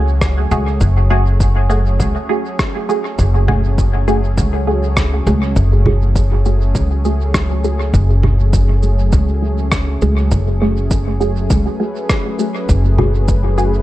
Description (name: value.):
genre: ambient dub.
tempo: 101 BPM.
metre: 4/4.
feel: swing 55% on 16ths.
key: F# minor.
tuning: A4 = 439 Hz.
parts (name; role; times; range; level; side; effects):
warm analog pad; sustained chords; 0.0-13.8 s; F#3 to C#5; -24 LUFS; equal; chorus.
filtered dub chord stab; stabs; 0.0-13.7 s; A3 to G#4; -21 LUFS; right 1 dB; phaser, wide subtle chorus, dub echo.
upright bass; bass; 0.0-13.8 s; F#1 to C#2; -14 LUFS; equal; tube saturation.
electronic kick drum; drums; 0.2-13.4 s; none; -17 LUFS; equal; overdrive.
electronic rim click, cabasa and congas; drums; 0.2-13.7 s; none; -23 LUFS; right 2 dB; dub echo.
room: little or no reverb.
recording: echo-heavy mix.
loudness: -13 LUFS.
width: side -15 dB against mid.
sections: 0.0-13.8 A section.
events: fade-in on analog synth pad 0.0-13.8.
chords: 0.0 F#madd9.